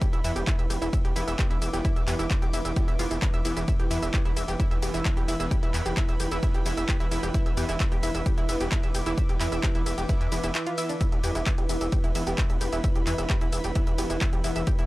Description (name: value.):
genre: driving peak-time techno.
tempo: 131 BPM.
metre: 4/4.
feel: straight.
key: unclear.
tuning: A4 = 439 Hz.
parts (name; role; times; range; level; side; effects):
analog pluck; riff; 0.0-14.9 s; D4 to E5; -33 LUFS; equal; chorus, tube saturation, cassette tape, sidechain pumping, analog delay.
analog drone; drone; 0.0-14.9 s; E3; -40 LUFS; right 1 dB; none.
electronic kick drum; drums; 0.0-14.8 s; none; -26 LUFS; equal; none.
techno drum kit; drums; 0.0-14.9 s; handclaps, hi-hat, ride cymbal, shaker; -34 LUFS; equal; none.
airy breathy pad; texture; 0.0-14.9 s; E4 to D6; -34 LUFS; equal; chorus, sidechain pumping.
gritty driven synth bass; bass; 0.1-14.9 s; E1 to E2; -31 LUFS; equal; sidechain pumping.
supersaw stab; stabs; 0.2-14.6 s; E3 to E4; -38 LUFS; right 2 dB; sidechain pumping, analog delay.
room: little or no reverb.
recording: dry, gritty hardware recording, transformer saturation.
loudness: -24 LUFS.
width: side -18 dB against mid.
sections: 0.0-14.9 A section.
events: kick drops out 10.5-11.0.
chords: 0.0 E5.